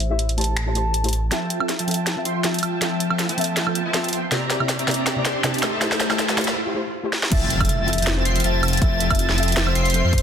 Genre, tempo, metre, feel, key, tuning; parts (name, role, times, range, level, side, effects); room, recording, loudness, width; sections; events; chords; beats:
future bass; 160 BPM; 4/4; swing 54% on 16ths, half-time; F major; A4 = 440 Hz
soft octave-layered synth lead; melody; 0.0-1.2, 7.3-10.2 s; C5 to A5; -28 LUFS; left 2 dB; chorus, phaser, cassette tape, sidechain pumping, ping-pong delay
soft round pluck; accompaniment; 0.0-10.0 s; C3 to E5; -29 LUFS; left 2 dB; ensemble chorus, sidechain pumping, dub echo
wide detuned saw bass; bass; 0.0-1.3, 7.3-10.2 s; F1 to F2; -22 LUFS; equal; chorus, sidechain pumping
trap drum kit; drums; 0.0-10.2 s; crash cymbal, finger snaps, hi-hat, snare drum, woodblock; -23 LUFS; right 1 dB; overdrive, high-pass filter on snare, high-pass filter on hats, high-pass filter on perc, high-pass filter on cymbals
big bright polysynth; riff; 1.3-10.1 s; F3 to C6; -24 LUFS; equal; wide subtle chorus, sidechain pumping
riser and impact; sound effects; 2.8-8.8 s; -30 LUFS; right 1 dB
airy dreamy lead; arpeggios; 7.3-10.1 s; A6 to C7; -27 LUFS; equal; chorus, sidechain pumping
electronic kick drum; drums; 7.3-10.2 s; -20 LUFS; equal; overdrive
light reverb, digital ambience; dense, heavily limited modern master; -19 LUFS; side -8 dB against mid
0.0-1.3 A section; 1.3-7.3 B section; 7.3-10.2 C section
build-up 1.3-7.3; drum fill 1.3-6.6, 7.1; filter sweep on analog polysynth 1.3-7.3; riser 2.8-6.6; break 6.6-7.3; drop 7.3-10.2; impact 7.3-8.8
0.0 Am7; 1.3 Fmaj7; 4.3 C9; 5.6 Am7; 7.3 Fmaj7
0.19 0.57 0.94 | 1.32 1.69 2.07 2.44 | 2.82 3.19 3.57 3.94 | 4.32 4.69 5.07 5.44 | 5.82 6.19 6.57 6.94 | 7.32 7.69 8.07 8.44 | 8.82 9.19 9.57 9.94